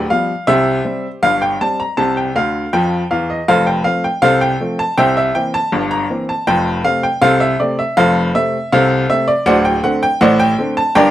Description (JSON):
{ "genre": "ragtime piano", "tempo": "80 BPM", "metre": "2/4", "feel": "straight", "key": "F major", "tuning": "A4 = 441 Hz", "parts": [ { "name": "clear upright piano", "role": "solo", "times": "0.0-11.1 s", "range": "D1 to Bb5", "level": "-13 LUFS", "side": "equal", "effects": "none" } ], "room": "moderate studio reverb, RT60 0.5 s", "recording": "none", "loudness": "-13 LUFS", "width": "side -13 dB against mid", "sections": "0.0-11.1 A section", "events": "upright piano fill 2.4-3.5", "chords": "0.5 C; 3.5 F; 5.0 C7; 6.5 F; 9.5 D5", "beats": "| 0.47 1.23 | 1.98 2.73 | 3.49 4.24 | 4.98 5.73 | 6.48 7.23 | 7.98 8.72 | 9.47 10.21 | 10.96" }